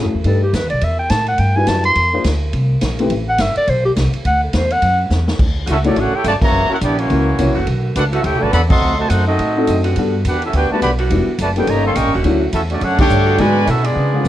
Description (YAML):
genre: jazz, big band swing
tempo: 210 BPM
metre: 4/4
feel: swing 60% on 8ths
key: D major from 5.4 s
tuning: A4 = 440 Hz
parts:
  - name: warm baby grand piano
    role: accompaniment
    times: 0.0-3.1, 5.8-7.6, 9.6-14.3 s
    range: D3 to C#5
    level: -19 LUFS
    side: left 3 dB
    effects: none
  - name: upright bass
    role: bass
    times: 0.0-14.3 s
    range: Eb1 to C#3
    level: -18 LUFS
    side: equal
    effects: none
  - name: swinging big-band drum kit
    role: drums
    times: 0.2-14.3 s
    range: crash cymbal, hi-hat, kick drum, ride cymbal, snare drum, toms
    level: -22 LUFS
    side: equal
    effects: none
  - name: mellow clarinet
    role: melody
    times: 0.3-5.0 s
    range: G4 to C6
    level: -16 LUFS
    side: equal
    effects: plate reverb
  - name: mellow trumpet section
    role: melody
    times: 5.7-14.3 s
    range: A3 to Db6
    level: -18 LUFS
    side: equal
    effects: plate reverb
  - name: clear trombone section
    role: second line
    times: 5.7-14.3 s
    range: B2 to G4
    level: -22 LUFS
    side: right 2 dB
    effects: none
  - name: warm saxophone section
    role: sustained chords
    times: 5.7-13.6 s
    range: D3 to F#4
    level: -24 LUFS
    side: right 4 dB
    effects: none
room: light reverb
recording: worn, warbling old tape, cassette tape, warbly pitch drift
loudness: -13 LUFS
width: side -13 dB against mid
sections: 0.0-5.4 A section; 5.4-14.3 B section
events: clarinet solo 0.0-5.4; drum fill 5.1; band accent 6.4, 8.7, 13.0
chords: 0.2 B7alt; 0.8 Em9; 2.0 Bbadd9; 3.1 Am9; 4.2 D; 5.4 Dmaj7; 6.5 F#7; 7.7 Bm7; 8.8 D7b9; 10.0 Gmaj7; 11.1 Em9; 11.7 Eb7#11; 12.2 Dmaj7; 13.4 G#m7b5